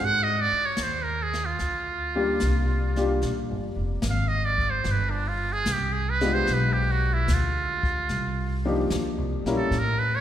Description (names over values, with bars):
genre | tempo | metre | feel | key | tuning
jazz ballad | 74 BPM | 4/4 | swing 68% on 8ths | unclear | A4 = 441 Hz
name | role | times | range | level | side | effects
trumpet with metal mute | melody | 0.0-10.2 s | D4 to F#5 | -26 LUFS | right 3 dB | none
upright bass | bass | 0.0-10.2 s | F1 to A2 | -27 LUFS | equal | none
jazz brush drum kit | drums | 0.8-10.2 s | brushed snare drum, hi-hat, kick drum, snare drum | -34 LUFS | left 2 dB | none
warm upright piano | accompaniment | 2.2-9.7 s | F3 to Bb4 | -28 LUFS | left 3 dB | none
room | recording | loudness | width
wet concert hall reverb, RT60 2.2 s | recorded in a church or concert hall | -23 LUFS | side -11 dB against mid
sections
0.0-10.2 A section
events
muted trumpet solo 0.0-10.2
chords
0.0 Ab5; 1.6 Gm7; 4.8 G7b9; 8.1 Cm11